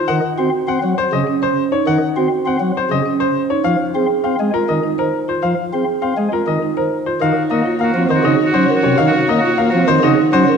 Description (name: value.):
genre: classical, minimalist pattern music.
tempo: 101 BPM.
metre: 3/4.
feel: straight.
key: Eb dorian.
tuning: A4 = 441 Hz.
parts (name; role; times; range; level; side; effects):
bright baby grand piano; melody; 0.0-10.5 s; Bb4 to Gb5; -20 LUFS; left 6 dB; none.
marimba with medium mallets; arpeggios; 0.0-10.6 s; C4 to C5; -18 LUFS; right 5 dB; none.
chamber organ, sparkling flutes; accompaniment; 0.1-10.4 s; C3 to C4; -18 LUFS; equal; none.
clear oboe; second line; 7.2-10.5 s; Gb4; -22 LUFS; right 2 dB; none.
warm studio string section; sustained chords; 7.2-10.6 s; Gb4 to Db5; -24 LUFS; left 2 dB; none.
room: wet scoring stage reverb, RT60 1.9 s.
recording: dark, warm production.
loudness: -14 LUFS.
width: side -6 dB against mid.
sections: 0.0-7.2 A section; 7.2-10.6 B section.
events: none.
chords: 0.1 Ebm7; 3.6 Fm7/Eb; 7.2 Ebm9.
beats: | 0.08 0.68 1.27 | 1.87 2.46 3.06 | 3.65 4.24 4.84 | 5.43 6.03 6.62 | 7.21 7.81 8.40 | 8.99 9.59 10.18.